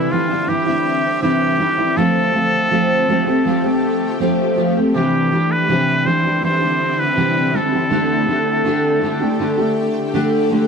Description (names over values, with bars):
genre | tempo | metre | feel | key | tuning
acoustic pop | 81 BPM | 4/4 | straight | C major | A4 = 441 Hz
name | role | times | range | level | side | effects
trumpet with straight mute | melody | 0.0-9.8 s | E4 to C5 | -19 LUFS | equal | none
fingerpicked steel-string acoustic guitar | accompaniment | 0.0-10.7 s | C3 to G4 | -17 LUFS | equal | double-tracked left and right
shimmering ambient pad | sustained chords | 0.0-10.7 s | D3 to E5 | -25 LUFS | equal | chorus, built-in reverb
room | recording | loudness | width
moderate studio reverb, RT60 0.5 s | dry, close 1970s-style studio recording | -15 LUFS | side -6 dB against mid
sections
0.0-10.7 A section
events
none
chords
0.0 Cadd9; 2.0 Fadd9; 4.9 Cadd9; 7.9 Gsus2/D